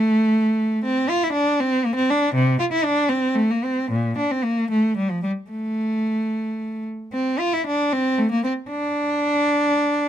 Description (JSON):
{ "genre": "classical, baroque-style suite movement for unaccompanied cello", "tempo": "73-80 BPM (dotted quarters)", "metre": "6/8", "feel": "rubato", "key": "unclear", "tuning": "A4 = 438 Hz", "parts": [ { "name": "rich cello", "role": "solo", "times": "0.0-10.1 s", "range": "Bb2 to F4", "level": "-19 LUFS", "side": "equal", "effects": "none" } ], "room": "little or no reverb", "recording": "close, detailed microphones", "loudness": "-19 LUFS", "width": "side -10 dB against mid", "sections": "0.0-7.2 A section; 7.2-10.1 B section", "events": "none", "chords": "none" }